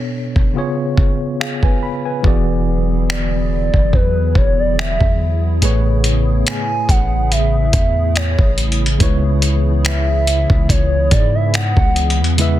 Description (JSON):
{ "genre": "contemporary R&B", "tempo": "71 BPM", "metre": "4/4", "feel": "swing 54% on 16ths", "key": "unclear", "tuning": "A4 = 441 Hz", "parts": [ { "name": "mellow tine electric piano", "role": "accompaniment", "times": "0.0-12.6 s", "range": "A2 to B5", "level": "-22 LUFS", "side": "equal", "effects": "overdrive, fast stereo tremolo" }, { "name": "dusty soul sampler-style drum kit", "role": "drums", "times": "0.4-12.6 s", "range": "finger snaps, hi-hat, kick drum", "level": "-16 LUFS", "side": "equal", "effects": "soft clipping on snare" }, { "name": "hollow soft pad", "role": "sustained chords", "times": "2.6-12.6 s", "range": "C#3 to G#4", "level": "-24 LUFS", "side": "equal", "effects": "ensemble chorus" }, { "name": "long sustained 808-style bass", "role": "bass", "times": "2.2-12.6 s", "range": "E1 to G#2", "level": "-17 LUFS", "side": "equal", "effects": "none" }, { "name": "hollow clarinet-like synth lead", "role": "melody", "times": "3.1-12.2 s", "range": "B4 to G#5", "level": "-21 LUFS", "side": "right 1 dB", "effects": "chorus, digital delay" } ], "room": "digital ambience", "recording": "dense, heavily limited modern master", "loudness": "-13 LUFS", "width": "side -13 dB against mid", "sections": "0.0-2.2 A section; 2.2-12.6 B section", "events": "none", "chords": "0.0 Bm7; 0.6 C#7; 2.2 E9; 5.6 Amaj9; 9.0 C#m7", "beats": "0.55 1.40 | 2.24 3.09 3.93 4.78 | 5.62 6.47 7.31 8.16 | 9.00 9.85 10.69 11.54 | 12.38" }